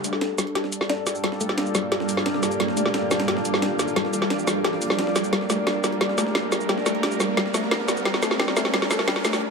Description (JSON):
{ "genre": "dark technical drum and bass", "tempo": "176 BPM", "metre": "4/4", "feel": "straight", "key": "G minor", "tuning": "A4 = 440 Hz", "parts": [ { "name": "sweeping resonant pad", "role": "sustained chords", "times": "0.0-9.5 s", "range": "G3 to Bb4", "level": "-28 LUFS", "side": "equal", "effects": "chorus" }, { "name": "wide unison pluck", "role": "arpeggios", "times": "0.0-9.3 s", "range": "G3 to G4", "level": "-30 LUFS", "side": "left 3 dB", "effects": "tape echo" }, { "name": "breakbeat sampler-style drum kit", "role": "drums", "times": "0.0-9.3 s", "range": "hi-hat, snare drum", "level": "-32 LUFS", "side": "right 2 dB", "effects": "high-pass filter on hats, high-pass filter on snare, high-pass filter on room" }, { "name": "drum and bass drum kit", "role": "drums", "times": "0.0-9.4 s", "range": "hi-hat, shaker, snare drum", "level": "-25 LUFS", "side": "equal", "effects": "none" }, { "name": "riser", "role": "sound effects", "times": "0.0-9.4 s", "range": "none", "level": "-32 LUFS", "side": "equal", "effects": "none" }, { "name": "granular cloud pad", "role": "texture", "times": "1.1-9.4 s", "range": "G3 to D5", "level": "-28 LUFS", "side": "right 2 dB", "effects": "built-in reverb" } ], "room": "moderate plate reverb, RT60 1.1 s", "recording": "high-pass filter", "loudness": "-21 LUFS", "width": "side -4 dB against mid", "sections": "0.0-9.5 A section", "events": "build-up 0.0-9.5; drum fill 0.0-9.4; riser 0.0-9.4; filter sweep on synth arpeggio sound 0.0-9.5", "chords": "0.0 Gm", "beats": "0.21 0.56 0.90 | 1.24 1.58 1.92 2.26 | 2.60 2.94 3.28 3.62 | 3.96 4.30 4.64 4.99 | 5.33 5.67 6.01 6.35 | 6.69 7.03 7.37 7.71 | 8.05 8.39 8.74 9.08 | 9.42" }